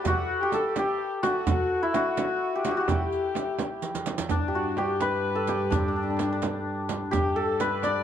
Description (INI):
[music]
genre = Persian modal ensemble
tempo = 85 BPM (dotted quarters)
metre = 6/8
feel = straight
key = G dastgah mahur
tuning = A4 = 440 Hz
[part]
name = santur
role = melody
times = 0.0-8.0 s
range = D4 to D5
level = -27 LUFS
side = equal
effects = plate reverb
[part]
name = dark kamancheh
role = second line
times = 0.0-8.0 s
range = C4 to D5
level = -31 LUFS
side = left 7 dB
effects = none
[part]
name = riq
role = percussion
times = 0.0-7.9 s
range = none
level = -38 LUFS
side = right 7 dB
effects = none
[part]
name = frame drum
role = percussion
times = 0.1-7.9 s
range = none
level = -33 LUFS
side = right 6 dB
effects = none
[part]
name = tombak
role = percussion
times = 0.1-8.0 s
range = none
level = -32 LUFS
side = right 2 dB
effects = none
[part]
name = warm double bass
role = drone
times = 4.3-8.0 s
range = G2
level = -34 LUFS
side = right 2 dB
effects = none
[sound]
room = moderate small room reverb, RT60 0.5 s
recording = dark, warm production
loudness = -24 LUFS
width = side -9 dB against mid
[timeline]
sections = 0.0-4.3 A section; 4.3-8.0 B section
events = drum fill 3.8-4.3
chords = none